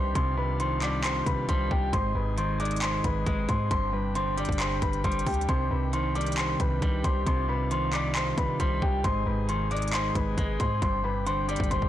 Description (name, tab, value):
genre	hip hop, trap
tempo	135 BPM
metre	4/4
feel	half-time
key	C harmonic minor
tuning	A4 = 441 Hz
part	dark baby grand piano	melody	0.0-11.9 s	G4 to D6	-30 LUFS	left 2 dB	low-pass filter
part	clean electric guitar	accompaniment	0.0-11.9 s	G2 to Ab3	-31 LUFS	right 1 dB	low-pass filter
part	pipe organ, cornet	sustained chords	0.0-11.9 s	C3 to Ab4	-38 LUFS	left 1 dB	none
part	clean 808-style bass	bass	0.0-11.9 s	G1 to C3	-32 LUFS	equal	none
part	trap drum kit	drums	0.2-11.9 s	handclaps, hi-hat, kick drum	-30 LUFS	equal	vintage 12-bit sampler grit
room	light reverb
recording	blown-out, overdriven recording, overdrive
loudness	-25 LUFS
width	side -12 dB against mid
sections	0.0-11.9 A section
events	drum fill 11.7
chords	0.0 Cmadd9; 1.9 Ab; 3.7 Gsus4; 5.5 Cmadd9; 9.0 Ab; 10.8 Gsus4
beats	| 0.15 0.60 1.04 1.49 | 1.93 2.38 2.82 3.27 | 3.71 4.15 4.60 5.04 | 5.49 5.93 6.38 6.82 | 7.26 7.71 8.15 8.60 | 9.04 9.49 9.93 10.38 | 10.82 11.27 11.71